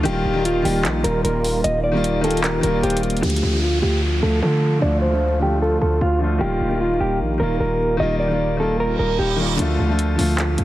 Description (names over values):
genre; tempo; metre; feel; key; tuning
hip hop, trap; 151 BPM; 4/4; half-time; D phrygian; A4 = 440 Hz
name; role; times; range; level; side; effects
clear concert grand piano; accompaniment; 0.0-10.6 s; D3 to G5; -23 LUFS; left 2 dB; low-pass filter
sweeping resonant pad; sustained chords; 0.0-9.6 s; D3 to F4; -27 LUFS; right 2 dB; chorus, low-pass filter
distorted 808-style bass; bass; 0.0-10.6 s; Eb1 to D3; -22 LUFS; equal; distortion
mellow electric guitar; melody; 0.1-9.4 s; F4 to Eb5; -22 LUFS; right 1 dB; low-pass filter
trap drum kit; drums; 0.1-3.4, 9.6-10.6 s; handclaps, hi-hat; -26 LUFS; equal; none
downlifter and reverse cymbal; sound effects; 3.2-9.6 s; none; -29 LUFS; right 3 dB; none
room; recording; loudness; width
light reverb, digital ambience; dense, heavily limited modern master, vinyl crackle; -17 LUFS; side -15 dB against mid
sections
0.0-3.2 A section; 3.2-9.6 B section; 9.6-10.6 C section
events
filter sweep 3.2-9.6; reverse cymbal 8.9-9.6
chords
0.1 Ebadd9; 3.2 Dm; 6.4 Ebadd9; 9.6 Dm